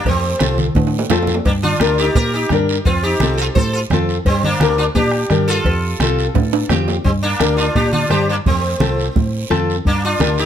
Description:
latin, cumbia; 172 BPM; 4/4; straight; G minor; A4 = 442 Hz
sitar; melody; 0.0-10.5 s; G3 to C5; -20 LUFS; equal; tape echo
fingered electric bass; bass; 0.1-10.5 s; C2 to Bb2; -20 LUFS; right 1 dB
bombo; percussion; 0.1-10.4 s; -20 LUFS; left 1 dB
congas; percussion; 0.1-10.4 s; -22 LUFS; right 2 dB
cowbell and timbales; percussion; 0.1-7.0 s; -23 LUFS; right 2 dB
guiro; percussion; 0.1-10.5 s; -29 LUFS; right 7 dB
flamenco guitar; accompaniment; 0.4-10.4 s; C4 to C5; -20 LUFS; left 5 dB
light reverb; -14 LUFS; side -9 dB against mid
0.0-7.1 A section; 7.1-10.5 A section
drum fill 0.6-1.5, 6.4-7.1
0.1 F; 1.5 Gm; 2.9 F; 4.3 Gm; 5.7 F; 7.1 Gm; 8.5 F; 9.9 Gm

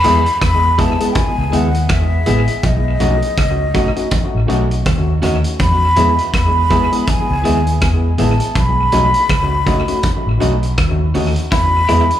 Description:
lovers rock reggae; 81 BPM; 4/4; swing 58% on 16ths; E major; A4 = 441 Hz
breathy mellow concert flute; melody; 0.0-12.2 s; D#5 to B5; -18 LUFS; equal; tape echo, slapback echo
tine electric piano; accompaniment; 0.0-12.0 s; G#3 to G#4; -21 LUFS; left 3 dB; slow stereo tremolo, tape echo, slapback echo
electric guitar through a small old amp; stabs; 0.0-12.0 s; F#4 to E5; -26 LUFS; right 6 dB; spring reverb, slapback echo
vintage drum kit; drums; 0.0-12.2 s; hi-hat, kick drum, rim click; -20 LUFS; equal; tape echo
congas; percussion; 0.0-12.1 s; -26 LUFS; right 4 dB
vintage muted fingered electric bass; bass; 0.1-12.1 s; A1 to E2; -16 LUFS; equal
semi-hollow electric guitar; riff; 11.5-12.0 s; E4; -22 LUFS; left 5 dB; tape echo, slapback echo
light reverb; live gig heard through the venue's PA, club reverb; -12 LUFS; side -11 dB against mid
0.0-12.2 A section
0.0 E; 2.6 B7; 5.6 E; 8.6 B7; 11.5 E

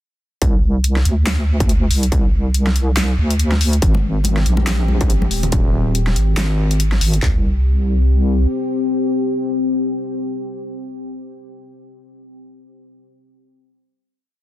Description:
deep dubstep; 141 BPM; 4/4; swing 58% on 16ths, half-time; C minor; A4 = 440 Hz
deep soft wobble bass; bass; 0.4-8.5 s; Eb1 to D2; -16 LUFS; equal; chorus, tube saturation
dubstep drum kit; drums; 0.4-7.3 s; handclaps, kick drum, toms; -17 LUFS; equal; distortion
dubstep drum kit; drums; 0.4-7.2 s; handclaps, hi-hat, snare drum; -23 LUFS; equal
deep dark ambient pad; sustained chords; 4.3-10.3 s; C4 to G4; -23 LUFS; left 3 dB; chorus, built-in reverb
congas and bongos; percussion; 3.9-5.5 s; -25 LUFS; left 3 dB; dub echo
little or no reverb; dense, heavily limited modern master; -15 LUFS; side -13 dB against mid
0.4-7.2 drop; 7.2-10.6 final chord
drop 0.4-7.2
0.4 Csus2; 3.8 Ab; 7.2 C5

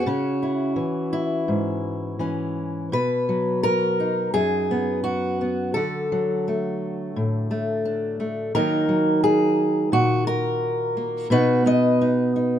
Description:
folk, solo fingerstyle acoustic guitar; 86 BPM; 4/4; straight; A4 = 441 Hz
fingerpicked steel-string acoustic guitar; solo; 0.0-12.6 s; F#2 to D#5; -20 LUFS; equal
moderate small room reverb, RT60 0.5 s; minimal, uncompressed stereo recording; -20 LUFS; side -10 dB against mid
0.0-2.9 A section; 2.9-12.6 B section
0.1 C#m; 2.9 B; 5.8 D; 8.5 D#m; 11.3 B

